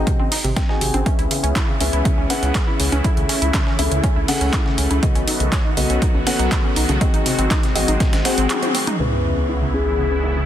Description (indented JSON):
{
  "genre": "progressive house",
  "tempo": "121 BPM",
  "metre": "4/4",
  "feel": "straight",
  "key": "C# minor",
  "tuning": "A4 = 440 Hz",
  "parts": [
    { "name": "dark grand piano", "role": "stabs", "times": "0.0-10.5 s", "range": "G#3 to G#5", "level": "-24 LUFS", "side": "left 2 dB", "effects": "sidechain pumping, low-pass filter, dub echo" },
    { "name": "round analog bass", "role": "bass", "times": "0.0-10.5 s", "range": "G#1 to C#2", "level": "-22 LUFS", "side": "equal", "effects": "sidechain pumping" },
    { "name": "wide unison pluck", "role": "arpeggios", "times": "0.1-10.4 s", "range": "B#2 to B#4", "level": "-26 LUFS", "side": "right 1 dB", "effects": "sidechain pumping, dub echo" },
    { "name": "deep house drum kit", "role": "drums", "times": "0.1-10.5 s", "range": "handclaps, hi-hat, toms", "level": "-25 LUFS", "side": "right 1 dB", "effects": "overdrive, low-pass filter on hats, low-pass filter on snare, low-pass filter on toms" },
    { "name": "dusty soul sampler-style drum kit", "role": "drums", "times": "0.1-10.4 s", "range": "hi-hat, snare drum", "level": "-31 LUFS", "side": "right 2 dB", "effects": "overdrive, sidechain pumping on hats, high-pass filter on hats, low-pass filter on hats, high-pass filter on snare, low-pass filter on snare" },
    { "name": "electronic kick drum", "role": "drums", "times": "0.1-8.1 s", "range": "none", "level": "-19 LUFS", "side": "equal", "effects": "overdrive" },
    { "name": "congas", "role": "percussion", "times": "0.2-9.0 s", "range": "none", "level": "-29 LUFS", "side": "equal", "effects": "sidechain pumping on perc" },
    { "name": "filtered supersaw swell", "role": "sustained chords", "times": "1.1-10.5 s", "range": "C#3 to F#4", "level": "-27 LUFS", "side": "right 1 dB", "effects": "sidechain pumping" },
    { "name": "soft octave-layered synth lead", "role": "melody", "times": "9.0-10.4 s", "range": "G#4 to B4", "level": "-24 LUFS", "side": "left 4 dB", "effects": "chorus, phaser, sidechain pumping, ping-pong delay" },
    { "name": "sub drop", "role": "sound effects", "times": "9.0-10.5 s", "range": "none", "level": "-26 LUFS", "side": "right 1 dB", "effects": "none" }
  ],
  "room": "digital ambience",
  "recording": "dense, heavily limited modern master",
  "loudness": "-16 LUFS",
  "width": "side -11 dB against mid",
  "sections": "0.0-9.0 A section; 9.0-10.5 B section",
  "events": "break 8.5-9.0; drum fill 8.5-9.0; band accent 8.5; impact 9.0-10.5; filter sweep on synth pluck 9.0-10.5",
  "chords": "0.0 G#7; 1.1 C#m7; 3.0 Amaj7/C#; 5.0 B7; 7.0 G#7; 9.0 C#m7"
}